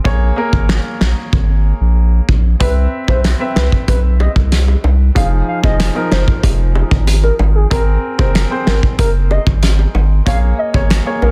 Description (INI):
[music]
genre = dancehall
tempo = 94 BPM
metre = 4/4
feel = straight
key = unclear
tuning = A4 = 439 Hz
[part]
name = warm baby grand piano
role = accompaniment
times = 0.0-11.3 s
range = F3 to E5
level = -24 LUFS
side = equal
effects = sidechain pumping
[part]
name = saturated sub bass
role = bass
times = 0.1-11.3 s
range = F1 to C2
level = -15 LUFS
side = equal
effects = none
[part]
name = loose indie drum kit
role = drums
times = 0.1-11.1 s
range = finger snaps, hi-hat, kick drum, snare drum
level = -18 LUFS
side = equal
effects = none
[part]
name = hollow clarinet-like synth lead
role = melody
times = 2.6-11.3 s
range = Ab4 to F5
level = -24 LUFS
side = equal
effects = chorus, phaser, delay
[part]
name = bongos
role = percussion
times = 2.6-11.3 s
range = none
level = -28 LUFS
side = equal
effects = none
[sound]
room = studio reverb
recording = dense, heavily limited modern master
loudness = -14 LUFS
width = mono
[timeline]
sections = 0.0-2.6 A section; 2.6-11.3 B section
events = none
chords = 0.1 Bbm7; 2.6 Cmaj7; 5.2 Fm7; 7.7 Abadd9; 10.3 Bbm7